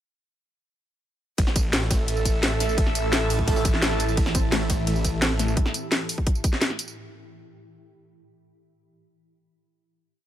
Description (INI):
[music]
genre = dark technical drum and bass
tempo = 172 BPM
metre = 4/4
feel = straight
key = unclear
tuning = A4 = 439 Hz
[part]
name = swarming drone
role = sustained chords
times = 2.2-5.5 s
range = A2 to A4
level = -31 LUFS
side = right 2 dB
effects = built-in reverb, sidechain pumping
[part]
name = snarling distorted saw bass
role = bass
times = 1.4-5.6 s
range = A1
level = -26 LUFS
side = equal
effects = distortion, tube saturation
[part]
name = drum and bass drum kit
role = drums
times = 1.4-6.9 s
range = hi-hat, snare drum, tambourine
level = -26 LUFS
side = equal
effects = none
[part]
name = electronic kick drum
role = drums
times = 1.4-6.5 s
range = none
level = -23 LUFS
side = equal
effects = overdrive
[part]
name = jungle sampler-style drum kit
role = drums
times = 1.4-5.5 s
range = hi-hat, ride cymbal, snare drum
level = -34 LUFS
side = equal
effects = overdrive, high-pass filter on cymbals, high-pass filter on snare, high-pass filter on hats
[part]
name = airy breathy pad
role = texture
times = 1.4-5.6 s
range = A4 to A5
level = -31 LUFS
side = right 2 dB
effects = chorus, sidechain pumping
[part]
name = warbly dusty pluck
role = arpeggios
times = 4.3-5.5 s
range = A3 to C4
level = -32 LUFS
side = left 3 dB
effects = chorus, sidechain pumping, dub echo
[sound]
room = light reverb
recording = none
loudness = -21 LUFS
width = side -11 dB against mid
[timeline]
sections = 1.4-7.0 drop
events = drop 1.4-7.0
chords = 1.4 A5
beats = | 1.38 1.73 2.08 2.43 | 2.78 3.13 3.48 3.83 | 4.17 4.52 4.87 5.22 | 5.57 5.92 6.27 6.62